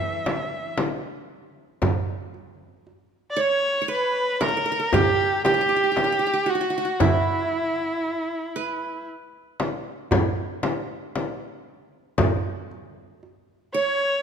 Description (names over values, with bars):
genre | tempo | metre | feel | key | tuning
Turkish makam ensemble | 116 BPM (eighths) | 10/8 | straight | E makam nikriz | A4 = 440 Hz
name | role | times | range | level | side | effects
rich kamancheh | melody | 0.0-14.2 s | E4 to E5 | -23 LUFS | equal | none
qanun | second line | 0.0-14.2 s | E4 to C#5 | -26 LUFS | right 5 dB | none
rich studio cello section | second line | 0.0-0.7 s | E3 | -40 LUFS | right 1 dB | none
darbuka | percussion | 0.3-13.9 s | none | -27 LUFS | right 4 dB | none
frame drum | percussion | 0.3-12.4 s | none | -26 LUFS | left 3 dB | none
room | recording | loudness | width
moderate recital hall reverb, RT60 1.9 s | minimal, uncompressed stereo recording | -21 LUFS | side -7 dB against mid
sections
0.0-1.8 A section; 1.8-14.2 B section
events
none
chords
none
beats
0.26 0.78 1.30 | 1.82 2.34 2.85 3.37 3.89 4.41 4.93 5.45 5.96 6.48 | 7.00 7.52 8.04 8.55 9.07 9.59 10.11 10.63 11.15 11.66 | 12.18 12.70 13.22 13.74